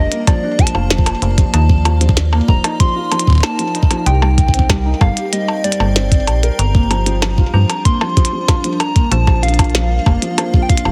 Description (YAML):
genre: IDM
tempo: 95 BPM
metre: 4/4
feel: straight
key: unclear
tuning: A4 = 440 Hz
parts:
  - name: soft struck synth lead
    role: melody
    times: 0.0-10.9 s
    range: D5 to C6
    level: -24 LUFS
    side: equal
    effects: chorus, tremolo, cassette tape, digital delay
  - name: icy glass pad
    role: sustained chords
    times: 0.0-10.9 s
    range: G3 to G5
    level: -28 LUFS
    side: equal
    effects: chorus, built-in reverb
  - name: metallic FM bass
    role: bass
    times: 0.0-10.9 s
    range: Eb1 to G2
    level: -17 LUFS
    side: equal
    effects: none
  - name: felt-muted upright piano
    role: arpeggios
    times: 0.1-10.9 s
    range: F3 to Bb4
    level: -24 LUFS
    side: equal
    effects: delay
  - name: glitchy drum kit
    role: drums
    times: 0.1-10.9 s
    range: hi-hat, percussion blips, snare drum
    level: -22 LUFS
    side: equal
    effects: none
  - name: electronic kick drum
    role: drums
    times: 0.3-10.8 s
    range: none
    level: -15 LUFS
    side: equal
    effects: none
room: little or no reverb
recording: heavily compressed radio sound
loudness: -14 LUFS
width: mono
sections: 0.0-10.9 A section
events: none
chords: 0.0 Bbmaj7; 1.5 Ebmadd9; 4.1 Cm7; 6.6 Gm7; 9.1 Bb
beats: 0.27 0.91 | 1.54 2.17 2.80 3.43 | 4.06 4.70 5.33 5.96 | 6.59 7.22 7.85 8.48 | 9.12 9.75 10.38